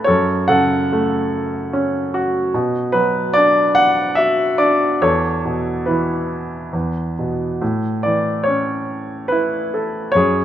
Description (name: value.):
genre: classical, lyrical solo piano.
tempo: 71 BPM.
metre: 3/4.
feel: rubato.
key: A major.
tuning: A4 = 440 Hz.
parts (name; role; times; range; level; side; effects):
warm grand piano; solo; 0.0-10.4 s; E2 to F#5; -16 LUFS; equal; none.
room: moderate recital hall reverb, RT60 1.6 s.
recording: none.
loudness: -16 LUFS.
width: side -11 dB against mid.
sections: 0.0-10.4 A section.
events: none.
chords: 0.1 F#m; 2.5 Bm; 5.0 Esus4; 6.7 E5; 7.6 Aadd9.